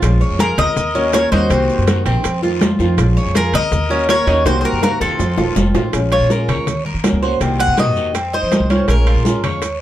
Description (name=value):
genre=latin, Cuban son and guajira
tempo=163 BPM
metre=4/4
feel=straight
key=Bb minor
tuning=A4 = 441 Hz
part: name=flamenco guitar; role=accompaniment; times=0.0-9.7 s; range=C3 to Gb4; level=-22 LUFS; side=equal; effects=none
part: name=Cuban tres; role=arpeggios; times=0.0-9.8 s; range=C4 to Db5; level=-23 LUFS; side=right 2 dB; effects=none
part: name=upright bass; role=bass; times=0.0-9.8 s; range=Eb1 to F3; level=-18 LUFS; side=equal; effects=none
part: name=bongos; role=percussion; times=0.0-9.8 s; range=none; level=-25 LUFS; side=left 5 dB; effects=none
part: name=congas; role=percussion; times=0.0-9.8 s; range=none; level=-21 LUFS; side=equal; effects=none
part: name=guiro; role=percussion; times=0.0-9.8 s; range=none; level=-33 LUFS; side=left 8 dB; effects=none
part: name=maracas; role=percussion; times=0.0-9.8 s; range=none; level=-34 LUFS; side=right 8 dB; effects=none
part: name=timbales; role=percussion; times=0.0-9.8 s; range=none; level=-26 LUFS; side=right 7 dB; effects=none
part: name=Cuban tres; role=melody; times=0.4-9.4 s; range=A4 to Gb5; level=-18 LUFS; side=left 1 dB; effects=none
part: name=bright trumpet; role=second line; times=0.4-5.7 s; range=F4 to Bb4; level=-26 LUFS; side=left 5 dB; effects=none
room=moderate studio reverb, RT60 0.5 s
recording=dark, warm production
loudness=-13 LUFS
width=side -12 dB against mid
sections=0.0-5.9 A section; 5.9-9.8 B section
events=drum fill 4.5-5.9; Cuban tres solo 5.9-9.8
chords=0.0 Bbm7; 0.8 Ebm7; 1.5 Cm7b5; 2.2 F7; 3.0 Bbm7; 3.7 Ebm7; 4.5 Cm7b5; 5.2 F7; 5.9 Bbm7; 6.7 Ebm7; 7.4 Cm7b5; 8.1 F7; 8.9 Bbm7